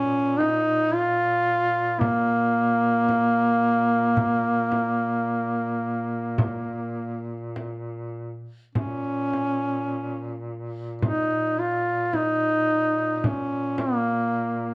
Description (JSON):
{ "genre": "caucasian folk, Caucasian lament", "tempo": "50-56 BPM", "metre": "4/4", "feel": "rubato", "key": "Bb minor", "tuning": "A4 = 440 Hz", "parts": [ { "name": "warm duduk", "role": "melody", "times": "0.0-14.7 s", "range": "Bb3 to F4", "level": "-25 LUFS", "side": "equal", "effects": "none" }, { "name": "warm duduk", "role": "drone", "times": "0.0-14.7 s", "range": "Bb2", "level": "-36 LUFS", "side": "equal", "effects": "none" }, { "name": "frame drum", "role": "percussion", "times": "0.4-14.0 s", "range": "none", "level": "-29 LUFS", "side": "equal", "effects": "none" } ], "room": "moderate large studio reverb, RT60 0.8 s", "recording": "band playing live in one room", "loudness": "-24 LUFS", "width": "mono", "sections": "0.0-8.7 A section; 8.7-14.7 B section", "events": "none", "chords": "none", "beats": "0.93 2.00 3.07 | 4.16 5.26 6.38 7.55 | 8.75 9.90 11.03 12.13 | 13.23 14.32" }